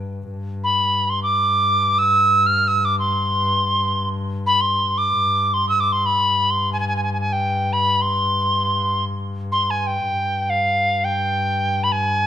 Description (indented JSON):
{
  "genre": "Turkish makam ensemble",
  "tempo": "free time",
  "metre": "none",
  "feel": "none",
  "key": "G makam hicaz",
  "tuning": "A4 = 442 Hz",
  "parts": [
    { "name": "warm double bass", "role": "drone", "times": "0.0-12.3 s", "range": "G2", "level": "-25 LUFS", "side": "left 2 dB", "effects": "none" },
    { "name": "soprano recorder", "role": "melody", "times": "0.6-12.3 s", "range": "F5 to F6", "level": "-18 LUFS", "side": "equal", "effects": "none" }
  ],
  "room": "moderate recital hall reverb, RT60 1.5 s",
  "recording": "minimal, uncompressed stereo recording",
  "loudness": "-17 LUFS",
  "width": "side -10 dB against mid",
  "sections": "0.3-12.3 A section",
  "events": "none",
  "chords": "none"
}